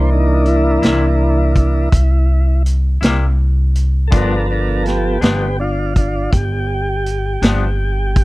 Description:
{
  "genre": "slow blues",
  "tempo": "54 BPM (dotted quarters)",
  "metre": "12/8",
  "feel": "straight",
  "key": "C mixolydian",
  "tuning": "A4 = 442 Hz",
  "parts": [
    { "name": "tonewheel organ", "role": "sustained chords", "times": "0.0-8.2 s", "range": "E3 to Bb4", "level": "-18 LUFS", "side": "right 1 dB", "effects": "slow rotary speaker" },
    { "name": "upright bass", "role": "bass", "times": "0.0-8.2 s", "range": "G1 to C2", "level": "-15 LUFS", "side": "equal", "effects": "none" },
    { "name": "vintage drum kit", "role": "drums", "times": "0.5-8.2 s", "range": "hi-hat, kick drum, snare drum", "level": "-15 LUFS", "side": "equal", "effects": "none" },
    { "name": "clean electric guitar", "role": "accompaniment", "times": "0.8-7.7 s", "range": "G2 to E4", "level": "-22 LUFS", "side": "left 4 dB", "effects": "tremolo" }
  ],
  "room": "studio ambience",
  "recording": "dry, close 1970s-style studio recording",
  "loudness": "-13 LUFS",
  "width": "side -20 dB against mid",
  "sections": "0.0-8.2 A section",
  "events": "tonewheel organ solo 0.0-8.2",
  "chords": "0.0 C7; 4.1 G7"
}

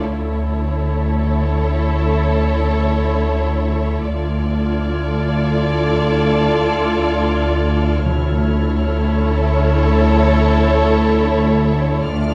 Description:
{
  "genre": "cinematic",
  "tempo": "free time",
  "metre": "none",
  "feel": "none",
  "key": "unclear",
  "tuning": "A4 = 440 Hz",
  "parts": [
    { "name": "warm symphonic viola section", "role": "accompaniment", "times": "0.0-12.3 s", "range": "E4 to F4", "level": "-28 LUFS", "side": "equal", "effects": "none" },
    { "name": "warm trombone section", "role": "sustained chords", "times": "0.0-12.3 s", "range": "A2 to A3", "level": "-29 LUFS", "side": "equal", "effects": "none" },
    { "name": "warm symphonic violin section", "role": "melody", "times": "0.1-12.3 s", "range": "C#5 to D5", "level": "-27 LUFS", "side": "equal", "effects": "none" },
    { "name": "warm symphonic violin section", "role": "second line", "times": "0.1-12.3 s", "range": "A4", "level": "-26 LUFS", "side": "equal", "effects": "none" },
    { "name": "dark French horn section", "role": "sustained chords", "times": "0.1-12.3 s", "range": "C#4 to F4", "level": "-33 LUFS", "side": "equal", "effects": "none" },
    { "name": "rich studio double bass section", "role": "bass", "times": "0.1-12.3 s", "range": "D2", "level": "-24 LUFS", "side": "equal", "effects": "none" },
    { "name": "rich symphonic cello section", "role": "bass", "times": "0.1-12.3 s", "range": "D2", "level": "-25 LUFS", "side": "equal", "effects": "none" },
    { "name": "saturated sub bass", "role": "drone", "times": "0.1-12.3 s", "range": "D2", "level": "-23 LUFS", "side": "equal", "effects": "none" },
    { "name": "rich symphonic violin section", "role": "texture", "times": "4.1-12.3 s", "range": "F6 to G#6", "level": "-36 LUFS", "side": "equal", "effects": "none" },
    { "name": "timpani", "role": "percussion", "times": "8.1-9.5 s", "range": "D3", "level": "-28 LUFS", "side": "equal", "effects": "none" }
  ],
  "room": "wet recital hall reverb, RT60 1.4 s",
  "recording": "recorded in a church or concert hall",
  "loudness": "-17 LUFS",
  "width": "mono",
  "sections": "0.0-12.3 A section",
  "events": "none",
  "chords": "0.1 A/D; 4.1 Dm; 8.1 A/D"
}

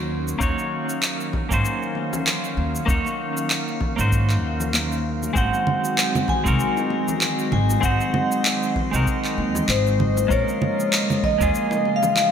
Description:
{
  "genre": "sunset chillout",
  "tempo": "97 BPM",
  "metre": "4/4",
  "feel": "swing 56% on 16ths",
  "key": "Eb dorian",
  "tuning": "A4 = 437 Hz",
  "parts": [
    { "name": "clean electric guitar", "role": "accompaniment", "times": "0.0-12.3 s", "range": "Ab3 to Db5", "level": "-25 LUFS", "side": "equal", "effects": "auto-pan, ping-pong delay" },
    { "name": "airy breathy pad", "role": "sustained chords", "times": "0.0-12.3 s", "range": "Db3 to F5", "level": "-28 LUFS", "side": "equal", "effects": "chorus" },
    { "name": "upright bass", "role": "bass", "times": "0.0-11.5 s", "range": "Ab1 to Ab2", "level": "-24 LUFS", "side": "equal", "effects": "none" },
    { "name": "electronic shaker, handclaps and congas", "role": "drums", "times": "0.3-12.3 s", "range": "none", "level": "-25 LUFS", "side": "right 1 dB", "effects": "gated reverb" },
    { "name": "electronic kick drum", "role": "drums", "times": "0.4-11.5 s", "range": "none", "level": "-26 LUFS", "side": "equal", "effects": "none" },
    { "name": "congas and bongos", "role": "percussion", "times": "1.3-12.3 s", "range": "none", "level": "-34 LUFS", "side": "left 3 dB", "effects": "none" },
    { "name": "drifting glass-harmonics texture", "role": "texture", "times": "6.2-12.3 s", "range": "Eb5 to C6", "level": "-35 LUFS", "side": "left 3 dB", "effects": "chorus, built-in reverb" },
    { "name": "vibraphone with medium hard mallets", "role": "melody", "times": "5.4-12.3 s", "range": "C5 to Ab5", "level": "-24 LUFS", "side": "left 1 dB", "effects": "none" }
  ],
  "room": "moderate plate reverb, RT60 3.1 s",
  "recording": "bright 1980s-style digital production",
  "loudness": "-19 LUFS",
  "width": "side -8 dB against mid",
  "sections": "0.0-12.3 A section",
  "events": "none",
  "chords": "0.0 Ebm7; 5.4 Ab7; 10.3 Bbm7"
}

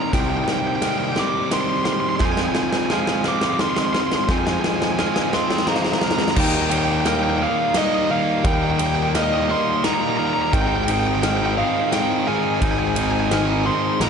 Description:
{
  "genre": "post-rock",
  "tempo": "86 BPM",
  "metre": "3/4",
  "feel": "straight",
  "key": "unclear",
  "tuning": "A4 = 439 Hz",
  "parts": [
    { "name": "biting lead guitar", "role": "melody", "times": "0.0-14.1 s", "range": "Eb5 to D6", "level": "-24 LUFS", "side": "right 1 dB", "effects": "overdrive, analog delay" },
    { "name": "icy glass pad", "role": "sustained chords", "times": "0.0-14.1 s", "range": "C3 to G5", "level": "-34 LUFS", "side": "equal", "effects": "none" },
    { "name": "clean electric guitar", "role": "arpeggios", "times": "0.0-14.1 s", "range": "F2 to Eb4", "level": "-31 LUFS", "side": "left 2 dB", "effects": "none" },
    { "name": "glockenspiel with rubber mallets", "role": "arpeggios", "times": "0.0-14.1 s", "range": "C6 to G6", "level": "-34 LUFS", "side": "right 4 dB", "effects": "analog delay" },
    { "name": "crunchy overdriven guitar", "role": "riff", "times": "0.0-14.1 s", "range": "Ab2 to G4", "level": "-25 LUFS", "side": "left 12 dB", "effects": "none" },
    { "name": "overdriven electric guitar", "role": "riff", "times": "0.0-14.1 s", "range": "Ab2 to G4", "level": "-25 LUFS", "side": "right 13 dB", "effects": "none" },
    { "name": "fuzz picked electric bass", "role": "bass", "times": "0.1-14.1 s", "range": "Ab1 to F2", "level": "-24 LUFS", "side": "right 1 dB", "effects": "overdrive" },
    { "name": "big rock drum kit", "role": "drums", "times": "0.1-14.1 s", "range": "crash cymbal, kick drum, ride cymbal, snare drum", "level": "-24 LUFS", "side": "equal", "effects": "none" }
  ],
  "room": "light reverb, small room ambience",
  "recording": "nothing above 11.0 kHz",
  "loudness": "-18 LUFS",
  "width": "side -6 dB against mid",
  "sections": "0.0-6.4 A section; 6.4-14.1 B section",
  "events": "build-up 0.0-6.4; drum fill 0.0-6.4",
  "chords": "0.0 Cm7; 2.2 Fm7; 6.4 Eb; 10.5 Ab"
}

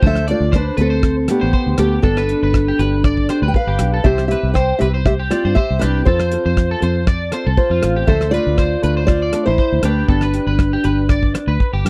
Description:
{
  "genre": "highlife guitar band",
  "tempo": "119 BPM",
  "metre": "4/4",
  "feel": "straight",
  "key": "unclear",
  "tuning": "A4 = 439 Hz",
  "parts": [
    { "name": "mellow electric guitar", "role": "accompaniment", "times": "0.0-11.9 s", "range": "F3 to A4", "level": "-29 LUFS", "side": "equal", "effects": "spring reverb" },
    { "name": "electric guitar at the edge of break-up", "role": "arpeggios", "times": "0.0-11.9 s", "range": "F4 to D5", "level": "-28 LUFS", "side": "equal", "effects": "analog chorus, slapback echo" },
    { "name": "fingered electric bass", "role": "bass", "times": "0.0-11.9 s", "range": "G1 to G2", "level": "-21 LUFS", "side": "equal", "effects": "none" },
    { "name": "cloth-damped thuddy drum kit", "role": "drums", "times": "0.0-11.9 s", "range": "hi-hat, kick drum, rim click", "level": "-19 LUFS", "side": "equal", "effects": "none" },
    { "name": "fingerpicked steel-string acoustic guitar", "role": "melody", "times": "0.1-11.6 s", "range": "B3 to G5", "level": "-20 LUFS", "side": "equal", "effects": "none" }
  ],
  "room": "little or no reverb",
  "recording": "dry, close 1970s-style studio recording",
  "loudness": "-16 LUFS",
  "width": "mono",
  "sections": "0.0-11.9 A section",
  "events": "none",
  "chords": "0.0 D5; 2.0 G; 4.1 C; 6.1 F; 8.1 Dm; 10.1 G"
}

